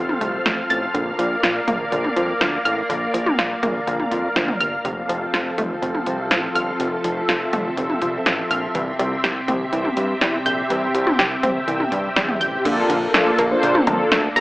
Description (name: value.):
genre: synth-pop.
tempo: 123 BPM.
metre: 4/4.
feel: straight.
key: unclear.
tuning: A4 = 440 Hz.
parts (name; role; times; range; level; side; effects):
string machine, full ensemble; sustained chords; 0.0-14.4 s; C3 to F5; -23 LUFS; equal; ensemble chorus.
analog pluck; arpeggios; 0.0-14.4 s; C3 to A6; -24 LUFS; equal; chorus, analog delay.
fat analog bass; bass; 0.0-14.4 s; F1 to G2; -26 LUFS; equal; none.
electro analog drum machine; drums; 0.1-14.4 s; cowbell, crash cymbal, hi-hat, kick drum, snare drum, toms; -22 LUFS; equal; none.
mellow synth brass; accompaniment; 12.7-14.4 s; Bb3 to C5; -19 LUFS; equal; chorus.
room: moderate recital hall reverb, RT60 1.4 s, digital ambience.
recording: dry, gritty hardware recording, AM radio sound.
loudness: -18 LUFS.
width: side -19 dB against mid.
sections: 0.0-12.7 A section; 12.7-14.4 B section.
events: none.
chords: 0.0 F; 0.9 Bb; 4.8 F; 8.8 C; 12.7 Bbmaj7.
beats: 0.46 | 0.95 1.43 1.92 2.41 | 2.90 3.38 3.87 4.36 | 4.85 5.34 5.82 6.31 | 6.80 7.29 7.78 8.26 | 8.75 9.24 9.73 10.21 | 10.70 11.19 11.68 12.16 | 12.65 13.14 13.63 14.12.